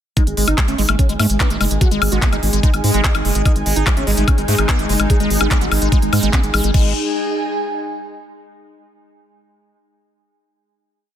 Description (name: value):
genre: psychedelic trance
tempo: 146 BPM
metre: 4/4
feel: straight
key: unclear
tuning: A4 = 436 Hz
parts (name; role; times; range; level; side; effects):
- wide unison lead; melody; 0.2-6.9 s; G#3 to G#4; -24 LUFS; right 1 dB; phaser, sidechain pumping, dub echo
- liquid acid bass; riff; 0.2-6.9 s; F#3 to D#4; -24 LUFS; moving between left 5 dB and right 6 dB; phaser, auto-pan, sidechain pumping, dub echo
- drum and bass drum kit; drums; 0.2-6.8 s; crash cymbal, handclaps, hi-hat, woodblock; -21 LUFS; left 2 dB; none
- electronic kick drum; drums; 0.2-6.8 s; none; -16 LUFS; equal; none
- airy breathy pad; texture; 0.2-8.3 s; D#4 to G#5; -25 LUFS; equal; chorus, sidechain pumping
- round analog bass; bass; 0.3-6.9 s; F#1 to G#2; -19 LUFS; equal; none
- vowel-sweep wobble bass; second line; 2.1-5.6 s; G#3 to B3; -34 LUFS; left 2 dB; none
- evolving wavetable pad; sustained chords; 3.8-6.8 s; G#3 to D#4; -27 LUFS; left 3 dB; ensemble chorus, built-in reverb, sidechain pumping
room: little or no reverb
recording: dense, heavily limited modern master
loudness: -14 LUFS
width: side -10 dB against mid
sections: 0.2-6.7 groove; 6.7-8.4 final chord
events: none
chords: 0.2 G#5